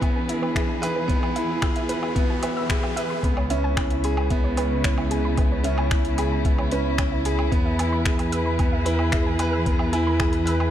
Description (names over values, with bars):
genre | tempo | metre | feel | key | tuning
piano and strings electronica | 112 BPM | 4/4 | straight | C# minor | A4 = 440 Hz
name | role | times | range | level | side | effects
rich string quartet | sustained chords | 0.0-10.7 s | E2 to B4 | -30 LUFS | left 1 dB | sidechain pumping
clear concert grand piano | riff | 0.0-10.7 s | B3 to G#5 | -25 LUFS | right 1 dB | digital delay
deep house drum kit | drums | 0.0-10.7 s | finger snaps, hi-hat, woodblock | -31 LUFS | left 1 dB | studio reverb
electronic kick drum | drums | 0.0-10.3 s | none | -24 LUFS | equal | studio reverb
riser | sound effects | 0.0-3.2 s | none | -35 LUFS | equal | none
soft round pluck | arpeggios | 0.2-10.7 s | B4 to E6 | -33 LUFS | right 2 dB | chorus, cassette tape, sidechain pumping, digital delay
dark detuned saw bass | bass | 3.2-10.7 s | C#2 to E2 | -25 LUFS | equal | sidechain pumping
room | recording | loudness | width
light reverb | dark, warm production | -20 LUFS | side -11 dB against mid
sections
0.0-3.2 A section; 3.2-10.7 B section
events
build-up 0.0-3.2; riser 0.0-3.2; filter sweep on synth arpeggio sound 0.0-3.2; drop 3.2-10.7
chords
0.0 E; 3.2 C#m7; 7.5 E